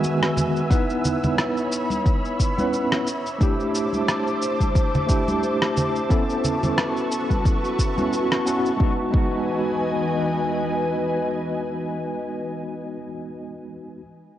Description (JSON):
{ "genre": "sunset chillout", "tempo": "89 BPM", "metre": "4/4", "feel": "swing 56% on 16ths", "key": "E major", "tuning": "A4 = 439 Hz", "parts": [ { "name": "bright tine electric piano", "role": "accompaniment", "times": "0.0-14.0 s", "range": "D#3 to B4", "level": "-25 LUFS", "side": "equal", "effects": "medium stereo tremolo, auto-pan, low-pass filter, tape echo" }, { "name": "ethereal airy pad", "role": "sustained chords", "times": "0.0-12.3 s", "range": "E3 to D6", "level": "-27 LUFS", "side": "left 1 dB", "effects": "ensemble chorus, built-in reverb, vintage 12-bit sampler grit" }, { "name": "electronic shaker and rim click", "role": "drums", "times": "0.0-8.8 s", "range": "none", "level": "-27 LUFS", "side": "equal", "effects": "overdrive" }, { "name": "wind-like tuned noise texture", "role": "texture", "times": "0.0-8.8 s", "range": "E5 to E6", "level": "-35 LUFS", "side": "right 2 dB", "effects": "built-in reverb" }, { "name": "congas", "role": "percussion", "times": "0.4-8.1 s", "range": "none", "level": "-28 LUFS", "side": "right 1 dB", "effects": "none" }, { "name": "electronic kick drum", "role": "drums", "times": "0.7-9.4 s", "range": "none", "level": "-21 LUFS", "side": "equal", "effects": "none" } ], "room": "moderate lush hall reverb, RT60 2.5 s", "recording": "worn, warbling old tape, cassette tape, warbly pitch drift, nothing above 10.3 kHz", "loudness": "-20 LUFS", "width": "side -12 dB against mid", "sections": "0.0-8.8 A section; 8.8-11.5 B section", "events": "none", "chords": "0.0 Emaj7; 0.7 C#m9; 3.1 C69; 6.1 A69; 8.8 Emaj7", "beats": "0.03 | 0.71 1.38 2.06 2.73 | 3.40 4.08 4.75 5.43 | 6.10 6.78 7.45 8.12 | 8.80 9.47 10.15 10.82" }